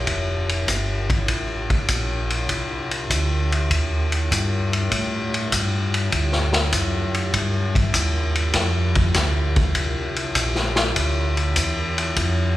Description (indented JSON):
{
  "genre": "soul jazz organ trio",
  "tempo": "99 BPM",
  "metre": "4/4",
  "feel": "swing 69% on 8ths",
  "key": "F mixolydian",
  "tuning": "A4 = 440 Hz",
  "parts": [
    { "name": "mellow tonewheel organ", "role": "bass", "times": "0.0-12.6 s", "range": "F1 to A2", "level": "-23 LUFS", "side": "right 1 dB", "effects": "slow rotary speaker" },
    { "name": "vintage drum kit", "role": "drums", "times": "0.1-12.4 s", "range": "hi-hat, kick drum, ride cymbal, snare drum", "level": "-21 LUFS", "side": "left 1 dB", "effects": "none" }
  ],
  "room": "wet church reverb, RT60 3.0 s",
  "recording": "recorded in a church or concert hall",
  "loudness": "-19 LUFS",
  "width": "side -15 dB against mid",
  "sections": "0.0-12.6 A section",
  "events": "none",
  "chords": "none",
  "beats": "| 0.08 0.68 1.29 1.89 | 2.50 3.10 3.71 4.31 | 4.92 5.52 6.13 6.73 | 7.33 7.94 8.54 9.15 | 9.75 10.36 10.96 11.57 | 12.17"
}